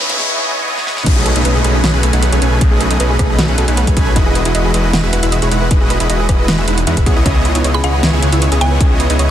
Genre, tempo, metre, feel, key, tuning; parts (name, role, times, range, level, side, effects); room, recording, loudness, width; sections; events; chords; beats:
future bass; 155 BPM; 4/4; half-time; A4 = 440 Hz
felt-muted upright piano; accompaniment; 0.0-1.1 s; C#3 to B4; -31 LUFS; equal
soft round pluck; arpeggios; 0.0-9.2 s; C#4 to D#5; -23 LUFS; right 3 dB; chorus, sidechain pumping, ping-pong delay
dense compressed supersaw; riff; 0.0-9.3 s; G#3 to G#5; -18 LUFS; right 1 dB; cassette tape, sidechain pumping, ping-pong delay
pop drum kit; drums; 0.0-9.3 s; crash cymbal, hi-hat, rim click, snare drum; -20 LUFS; equal
riser, swell and downlifter; sound effects; 0.0-4.2 s; -21 LUFS; equal
wide detuned saw bass; bass; 1.1-9.3 s; E1 to E2; -15 LUFS; equal; chorus, sidechain pumping
electronic kick drum; drums; 1.1-8.9 s; -13 LUFS; equal
mallet-like synth pluck; melody; 7.7-8.7 s; F#5 to B5; -22 LUFS; equal; chorus, sidechain pumping, dub echo
light reverb, digital ambience; dense, heavily limited modern master, high-pass filter; -11 LUFS; side -11 dB against mid
0.0-1.1 A section; 1.1-9.3 B section
build-up 0.0-1.1; drum fill 0.0, 0.8; riser 0.0; swell 0.3-1.1; drop 1.1-9.3
0.0 C#m9; 1.1 B13; 4.2 Emaj9; 7.1 C#m9
0.29 0.68 | 1.06 1.45 1.84 2.23 | 2.61 3.00 3.39 3.77 | 4.16 4.55 4.93 5.32 | 5.71 6.10 6.48 6.87 | 7.26 7.64 8.03 8.42 | 8.81 9.19